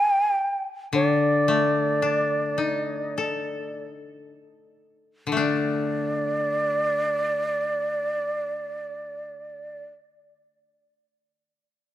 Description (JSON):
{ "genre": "japanese traditional, Japanese chamber music", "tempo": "free time", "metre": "none", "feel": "none", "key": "unclear", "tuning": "A4 = 441 Hz", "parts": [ { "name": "breathy mellow shakuhachi", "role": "melody", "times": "0.0-9.9 s", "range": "D5 to G5", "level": "-24 LUFS", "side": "right 1 dB", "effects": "none" }, { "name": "koto", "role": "accompaniment", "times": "0.9-9.9 s", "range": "D3 to A4", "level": "-26 LUFS", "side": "left 4 dB", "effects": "none" } ], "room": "moderate concert hall reverb, RT60 2.4 s", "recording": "close, detailed microphones", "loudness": "-22 LUFS", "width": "side -12 dB against mid", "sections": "0.0-5.4 A section; 5.4-10.5 B section", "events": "slowing down 0.6-5.4", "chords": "none" }